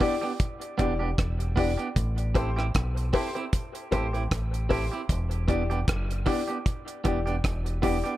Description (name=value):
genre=dub reggae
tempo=77 BPM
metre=4/4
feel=swing 56% on 16ths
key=E minor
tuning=A4 = 441 Hz
part: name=clean electric guitar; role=accompaniment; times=0.0-8.1 s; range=B3 to G4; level=-32 LUFS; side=right 5 dB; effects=dub echo
part: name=dark upright piano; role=stabs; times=0.0-8.0 s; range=E4 to D5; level=-32 LUFS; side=left 5 dB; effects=dub echo
part: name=deep reggae drum kit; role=drums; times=0.0-8.2 s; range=hi-hat, kick drum, rim click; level=-28 LUFS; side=equal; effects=none
part: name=deep dub fingered electric bass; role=bass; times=0.8-8.0 s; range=E1 to B1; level=-28 LUFS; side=equal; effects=none
room=light reverb, small room reverb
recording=none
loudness=-25 LUFS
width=side -15 dB against mid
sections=0.0-8.2 A section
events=none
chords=0.0 Em7; 2.0 Am7; 5.1 Em7